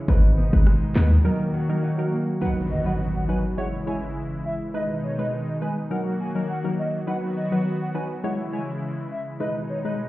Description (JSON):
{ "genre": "dancehall", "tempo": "103 BPM", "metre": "4/4", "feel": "straight", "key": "B major", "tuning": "A4 = 441 Hz", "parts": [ { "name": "warm analog pad", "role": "sustained chords", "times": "0.0-10.1 s", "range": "B2 to F#4", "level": "-28 LUFS", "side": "equal", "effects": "chorus, sidechain pumping" }, { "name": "nylon-string guitar", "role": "arpeggios", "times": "0.0-2.5 s", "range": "G#2 to E4", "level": "-28 LUFS", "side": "right 1 dB", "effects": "tape echo" }, { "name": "wavetable chord stab", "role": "accompaniment", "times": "0.1-10.0 s", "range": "F#3 to C#5", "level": "-28 LUFS", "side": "equal", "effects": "none" }, { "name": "hard-hitting 808-style bass", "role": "bass", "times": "0.1-1.2 s", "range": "G#1 to D#2", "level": "-18 LUFS", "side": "equal", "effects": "none" }, { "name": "afro-pop drum kit", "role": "drums", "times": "0.1-1.1 s", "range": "hi-hat, kick drum, rim click, snare drum", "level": "-19 LUFS", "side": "equal", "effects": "none" }, { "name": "hollow clarinet-like synth lead", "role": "melody", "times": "2.4-9.9 s", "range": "C#5 to G#5", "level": "-32 LUFS", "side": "equal", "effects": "chorus, tape echo" }, { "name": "impact", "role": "sound effects", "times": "2.4-4.7 s", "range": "none", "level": "-30 LUFS", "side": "equal", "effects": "none" } ], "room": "digital ambience", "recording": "heard muffled through a wall, stone room reverb, EQ", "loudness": "-22 LUFS", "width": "side -17 dB against mid", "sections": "0.0-2.4 A section; 2.4-10.1 B section", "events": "break 1.2-2.4; impact 2.4-4.7", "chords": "0.1 G#m; 1.2 D#m; 2.4 B; 3.6 C#m; 4.7 G#m; 5.9 D#m; 7.1 B; 8.2 C#m; 9.4 G#m" }